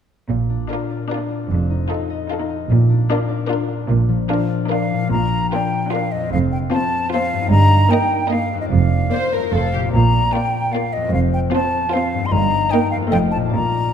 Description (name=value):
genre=cinematic, playful, whimsical film cue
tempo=150 BPM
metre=3/4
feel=straight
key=Bb major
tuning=A4 = 440 Hz
part: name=concert harp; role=arpeggios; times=0.3-13.9 s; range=F2 to Eb5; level=-24 LUFS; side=left 6 dB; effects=none
part: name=dark studio double bass section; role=bass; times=0.3-13.9 s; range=F1 to Bb1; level=-21 LUFS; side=right 4 dB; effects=none
part: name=warm studio cello section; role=bass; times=0.3-13.9 s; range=F2 to Bb2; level=-20 LUFS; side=right 2 dB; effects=none
part: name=warm chamber violin section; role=melody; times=0.7-13.4 s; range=A4 to Eb5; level=-31 LUFS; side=left 4 dB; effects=none
part: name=warm chamber violin section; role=second line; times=0.7-13.4 s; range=Eb4 to C5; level=-28 LUFS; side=left 3 dB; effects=none
part: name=rich chamber viola section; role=accompaniment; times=0.7-13.4 s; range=A3 to Eb4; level=-24 LUFS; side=right 1 dB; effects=none
part: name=silver concert flute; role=second line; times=4.7-13.9 s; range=Eb5 to C6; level=-21 LUFS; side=left 1 dB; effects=none
room=wet scoring stage reverb, RT60 1.9 s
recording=none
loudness=-16 LUFS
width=side -8 dB against mid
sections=0.3-5.1 A section; 5.1-13.9 B section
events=none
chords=0.3 Bb; 1.5 F7; 2.7 Bb; 6.3 F; 7.5 Eb/G; 8.7 Bb/F; 9.5 F; 9.9 Bb; 11.1 F; 12.3 Eb/G; 13.1 F7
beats=| 0.29 0.70 1.11 | 1.51 1.91 2.31 | 2.70 3.10 3.49 | 3.89 4.29 4.70 | 5.12 5.52 5.92 | 6.32 6.72 7.12 | 7.51 7.90 8.30 | 8.71 9.12 9.52 | 9.93 10.33 10.73 | 11.14 11.54 11.93 | 12.33 12.72 13.12 | 13.54